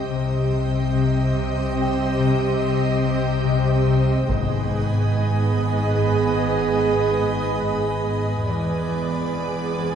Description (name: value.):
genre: cinematic, suspense film score.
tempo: 72 BPM.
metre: 5/4.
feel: straight.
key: C harmonic minor.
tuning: A4 = 442 Hz.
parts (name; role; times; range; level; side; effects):
muted studio violin section; melody; 0.0-9.9 s; D5 to Eb5; -32 LUFS; equal; none.
muted studio viola section; accompaniment; 0.0-9.9 s; Cb4 to Ab4; -25 LUFS; right 4 dB; none.
soft additive organ-like pad; sustained chords; 0.0-9.9 s; Cb5 to Ab5; -29 LUFS; right 2 dB; ensemble chorus, built-in reverb.
concert harp; riff; 0.0-9.9 s; E2 to C4; -24 LUFS; left 6 dB; none.
muted studio cello section; bass; 0.0-9.9 s; E2 to C3; -27 LUFS; right 3 dB; none.
muted studio double bass section; bass; 0.0-9.9 s; E1 to C2; -27 LUFS; right 2 dB; none.
impact and swell; sound effects; 0.0-0.1, 9.3-9.9 s; none; barely audible; none; none.
small celesta; texture; 0.0-4.3 s; G4 to G5; -32 LUFS; right 2 dB; none.
taiko ensemble; drums; 4.3-5.9 s; none; -30 LUFS; right 1 dB; none.
room: wet recital hall reverb, RT60 1.8 s.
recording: recorded in a church or concert hall.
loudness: -19 LUFS.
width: side -8 dB against mid.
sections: 0.0-9.9 A section.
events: none.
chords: 0.0 Cm; 4.3 Abm; 8.5 E7.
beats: | 0.11 0.95 1.79 2.62 3.45 | 4.29 5.12 5.94 6.77 7.62 | 8.47 9.34.